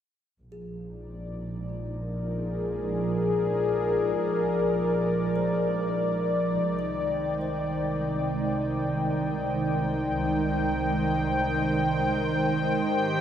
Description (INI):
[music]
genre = ambient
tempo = 77 BPM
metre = 4/4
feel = straight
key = unclear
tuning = A4 = 441 Hz
[part]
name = warm analog pad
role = sustained chords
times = 0.4-13.2 s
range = Eb3 to G5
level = -26 LUFS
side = equal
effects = chorus, shimmer reverb
[part]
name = warm symphonic double bass section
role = bass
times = 0.4-13.2 s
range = Ab1 to C2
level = -35 LUFS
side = equal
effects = none
[part]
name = organ-like drone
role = drone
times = 1.0-13.2 s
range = Ab3 to Eb4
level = -34 LUFS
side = right 1 dB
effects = ensemble chorus, built-in reverb
[part]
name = kalimba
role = arpeggios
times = 0.5-8.7 s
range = Ab4 to C5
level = -47 LUFS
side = left 3 dB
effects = none
[part]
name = drifting glass-harmonics texture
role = texture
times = 13.0-13.2 s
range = G4 to G5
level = -34 LUFS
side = equal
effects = chorus, built-in reverb
[sound]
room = wet lush hall reverb, RT60 2.5 s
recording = dreamy mix soaked in reverb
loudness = -24 LUFS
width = side -9 dB against mid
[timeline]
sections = 0.4-13.2 A section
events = none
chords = 0.4 Bb7; 6.7 Cmadd9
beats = | 0.42 1.20 1.98 2.76 | 3.54 4.32 5.10 5.88 | 6.66 7.44 8.21 8.99 | 9.77 10.55 11.33 12.11 | 12.89